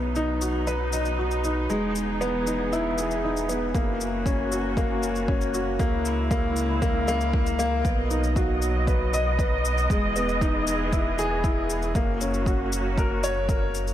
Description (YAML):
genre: piano and strings electronica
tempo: 117 BPM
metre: 4/4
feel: straight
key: B major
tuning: A4 = 440 Hz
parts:
  - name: muted studio string section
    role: sustained chords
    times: 0.0-13.9 s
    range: C#3 to D#5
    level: -30 LUFS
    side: equal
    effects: sidechain pumping, low-pass filter, shimmer reverb
  - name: warm upright piano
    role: riff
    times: 0.0-13.9 s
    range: G#3 to D#5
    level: -26 LUFS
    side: left 1 dB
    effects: digital delay, shimmer reverb
  - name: warm sub bass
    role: bass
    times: 0.0-13.9 s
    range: E1 to C#2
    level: -29 LUFS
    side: equal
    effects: tube saturation, sidechain pumping
  - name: shaker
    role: drums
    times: 0.2-13.9 s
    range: none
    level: -36 LUFS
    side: left 4 dB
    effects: overdrive, studio reverb
  - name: electronic kick drum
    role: drums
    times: 3.7-13.6 s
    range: none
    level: -26 LUFS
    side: equal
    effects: overdrive, studio reverb
room: moderate huge ambient reverb, RT60 5.1 s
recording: none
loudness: -22 LUFS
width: side -11 dB against mid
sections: 0.0-7.9 A section; 7.9-13.9 B section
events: build-up 0.0-7.9; filter sweep on string section 0.0-7.9; drop 7.9-13.9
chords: 0.0 B; 1.7 Emaj7; 3.8 F#; 5.8 C#m; 7.9 B; 9.9 Emaj7; 12.0 F#